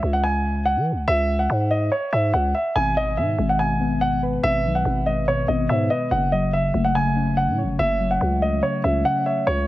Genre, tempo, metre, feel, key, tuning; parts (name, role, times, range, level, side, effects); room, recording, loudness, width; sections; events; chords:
hip hop, drill; 143 BPM; 4/4; half-time; A4 = 443 Hz
dark concert grand piano; melody; 0.0-9.7 s; C#5 to G#5; -22 LUFS; right 1 dB
growling 808-style bass; bass; 0.0-9.7 s; F#1 to E3; -23 LUFS; equal
muted felt-like synth keys; accompaniment; 2.8-9.5 s; B2 to C#5; -25 LUFS; left 2 dB; chorus
light reverb, small room ambience; -19 LUFS; side -16 dB against mid
0.0-9.5 A section
break 0.0-2.8
0.0 C#m; 2.8 G#m; 6.1 F#m